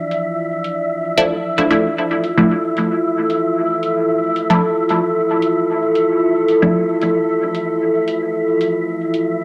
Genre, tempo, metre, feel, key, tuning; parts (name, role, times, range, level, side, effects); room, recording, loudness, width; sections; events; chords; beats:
dub techno; 113 BPM; 4/4; straight; D minor; A4 = 441 Hz
dark analog pad; sustained chords; 0.0-9.4 s; E4 to D5; -20 LUFS; equal; chorus, phaser
wind-like tuned noise texture; texture; 0.0-9.4 s; E5; -26 LUFS; equal; built-in reverb
electronic hi-hat; drums; 0.1-9.2 s; -38 LUFS; equal; low-pass filter on hats, low-pass filter on room
filtered dub chord stab; stabs; 1.2-6.8 s; F3 to E4; -20 LUFS; equal; phaser, dub echo
moderate spring reverb, RT60 1.2 s; dark, warm production; -17 LUFS; mono
0.0-9.4 A section
0.0 Dmadd9
0.38 0.91 1.44 | 1.97 2.50 3.03 3.56 | 4.09 4.63 5.16 5.69 | 6.22 6.75 7.28 7.81 | 8.34 8.87 9.40